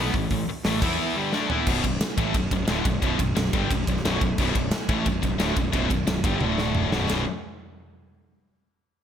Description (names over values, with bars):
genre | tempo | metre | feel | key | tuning
heavy metal | 177 BPM | 4/4 | straight | B minor | A4 = 440 Hz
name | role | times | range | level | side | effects
distorted electric guitar | riff | 0.0-7.2 s | B1 to E4 | -29 LUFS | right 9 dB | distortion
high-gain distorted guitar | riff | 0.0-7.2 s | B1 to E4 | -27 LUFS | left 10 dB | distortion
fuzz fingered electric bass | bass | 0.0-7.3 s | B0 to E2 | -29 LUFS | equal | overdrive
big rock drum kit | drums | 0.1-7.2 s | crash cymbal, hi-hat, kick drum, ride cymbal, snare drum, toms | -26 LUFS | equal | gated reverb
room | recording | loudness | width
light reverb, small room ambience | bright 1980s-style digital production | -22 LUFS | side -9 dB against mid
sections
0.0-1.7 A section; 1.7-7.1 B section; 7.1-8.4 C section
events
drum fill 1.3-1.7, 6.4-7.1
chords
0.0 A5; 0.8 E5; 1.2 A5; 1.7 Bm; 6.4 D5; 6.9 B5